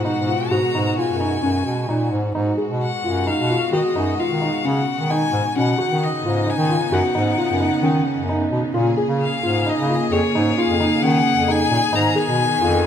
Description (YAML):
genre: contemporary instrumental, chamber music in an uneven meter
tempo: 131 BPM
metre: 7/4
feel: straight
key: G# dorian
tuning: A4 = 440 Hz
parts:
  - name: clear violin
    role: melody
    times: 0.0-12.9 s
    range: C#5 to A#5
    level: -23 LUFS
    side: left 5 dB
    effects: none
  - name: muted studio string section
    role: sustained chords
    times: 0.0-12.9 s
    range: B2 to G#4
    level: -25 LUFS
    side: right 1 dB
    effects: none
  - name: felt-muted upright piano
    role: arpeggios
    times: 0.0-12.9 s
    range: C#4 to G#4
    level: -22 LUFS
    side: equal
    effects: none
  - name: clear bass clarinet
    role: bass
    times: 0.0-12.9 s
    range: E#2 to D#3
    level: -22 LUFS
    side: equal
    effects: none
room: moderate scoring stage reverb, RT60 1.7 s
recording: none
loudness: -17 LUFS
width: side -9 dB against mid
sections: 0.0-2.4 A section; 2.4-12.9 B section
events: none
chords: 0.0 G#m7; 8.8 A#m7; 11.9 G#m